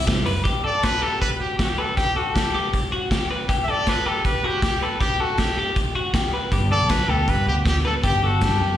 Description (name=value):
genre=jangly indie pop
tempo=158 BPM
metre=4/4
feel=straight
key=G major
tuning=A4 = 438 Hz
part: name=fingerpicked steel-string acoustic guitar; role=accompaniment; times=0.0-0.5, 6.5-8.8 s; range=G2 to E4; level=-30 LUFS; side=right 3 dB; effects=slapback echo
part: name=twelve-string electric guitar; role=arpeggios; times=0.0-8.8 s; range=F#4 to B4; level=-25 LUFS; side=left 4 dB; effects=tube saturation, spring reverb, slapback echo
part: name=vintage muted picked electric bass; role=bass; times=0.0-0.4, 6.5-8.8 s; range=F#1 to G2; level=-23 LUFS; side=equal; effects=none
part: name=raw garage drum kit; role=drums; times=0.1-8.5 s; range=hi-hat, kick drum, snare drum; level=-23 LUFS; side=equal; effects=none
part: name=brilliant trumpet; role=melody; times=0.7-8.8 s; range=F#4 to E5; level=-24 LUFS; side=equal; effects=slapback echo
room=moderate club ambience, RT60 0.5 s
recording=live gig heard through the venue's PA, club reverb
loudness=-19 LUFS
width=side -11 dB against mid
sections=0.5-8.8 A section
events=none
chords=0.5 Gmaj9/F#; 6.5 G